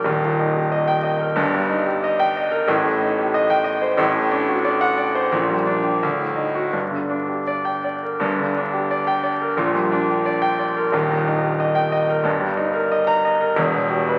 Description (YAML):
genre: classical, virtuoso piano study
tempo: 81-94 BPM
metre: 2/4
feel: rubato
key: G minor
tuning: A4 = 435 Hz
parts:
  - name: clear grand piano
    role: solo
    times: 0.0-14.2 s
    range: Eb1 to Bb5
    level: -20 LUFS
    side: equal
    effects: none
room: wet scoring stage reverb, RT60 1.7 s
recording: very old 78 rpm record, vinyl crackle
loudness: -20 LUFS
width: mono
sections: 0.0-8.2 A section; 8.2-14.2 A section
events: none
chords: 0.1 Eb; 1.4 Eb/G; 2.7 Am7b5; 4.0 D7/A; 5.3 Gm/Bb; 6.0 D; 6.7 Gm; 9.6 Gm/Bb; 10.9 Eb; 12.3 Eb/G; 13.6 C#m7b5/E (rootless)